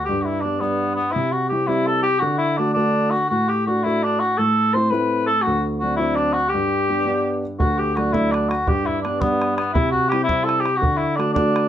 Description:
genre	celtic folk, Celtic jig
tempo	112 BPM (dotted quarters)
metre	6/8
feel	straight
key	unclear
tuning	A4 = 440 Hz
part	mellow cor anglais	melody	0.0-11.7 s	B3 to C5	-20 LUFS	left 1 dB	none
part	dark baby grand piano	accompaniment	0.0-11.7 s	D2 to F#4	-22 LUFS	right 1 dB	none
part	bodhran	percussion	7.6-11.6 s	none	-24 LUFS	right 1 dB	none
room	wet studio reverb, RT60 0.5 s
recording	none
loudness	-18 LUFS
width	side -10 dB against mid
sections	0.0-7.6 A section; 7.6-11.7 A section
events	none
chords	0.1 G; 1.1 C; 2.2 D; 4.4 Am; 5.5 D7; 6.5 G; 7.6 D; 8.7 G; 9.8 C; 10.8 D

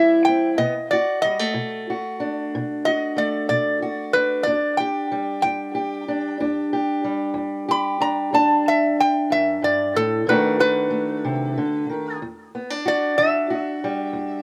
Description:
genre	acoustic country blues, solo or duo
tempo	62 BPM (dotted quarters)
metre	12/8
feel	straight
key	E minor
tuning	A4 = 443 Hz
part	metal-body resonator slide guitar	melody	0.0-14.4 s	A4 to B5	-23 LUFS	equal	none
part	fingerpicked steel-string acoustic guitar	accompaniment	0.0-14.4 s	E2 to G4	-25 LUFS	equal	slapback echo
room	light reverb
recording	recorded outdoors, with no room sound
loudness	-22 LUFS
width	mono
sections	0.0-12.2 A section; 12.2-14.4 B section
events	resonator guitar played with a steel bar solo 0.0-12.2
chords	0.0 C; 0.6 Bm7; 4.5 Em7; 10.3 B7#9; 12.2 Em9

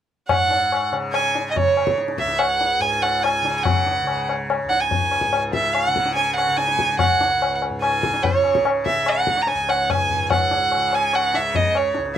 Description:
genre	indian classical, Hindustani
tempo	144 BPM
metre	4/4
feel	straight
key	unclear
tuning	A4 = 440 Hz
part	warm violin	melody	0.3-12.2 s	C#5 to A#5	-19 LUFS	right 3 dB	none
part	tanpura	drone	0.3-12.2 s	C#2 to C#3	-28 LUFS	equal	none
part	tabla	percussion	0.3-12.2 s	none	-23 LUFS	left 6 dB	none
room	light reverb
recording	none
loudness	-17 LUFS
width	side -10 dB against mid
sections	0.3-12.2 A section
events	none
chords	none

